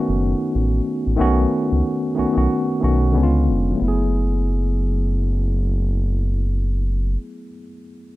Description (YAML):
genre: R&B, neo-soul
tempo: 92 BPM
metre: 4/4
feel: swing 57% on 16ths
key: F# dorian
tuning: A4 = 442 Hz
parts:
  - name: tine electric piano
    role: accompaniment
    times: 0.0-8.2 s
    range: D3 to G#4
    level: -22 LUFS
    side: left 1 dB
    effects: medium stereo tremolo
  - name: round analog bass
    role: bass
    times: 0.1-7.2 s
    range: E#1 to C#2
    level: -19 LUFS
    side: equal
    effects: none
room: little or no reverb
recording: dark, warm production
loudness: -17 LUFS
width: side -17 dB against mid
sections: 0.0-3.8 A section; 3.8-6.4 B section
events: none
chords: 0.0 B9; 3.1 C#7b9; 3.8 F#m11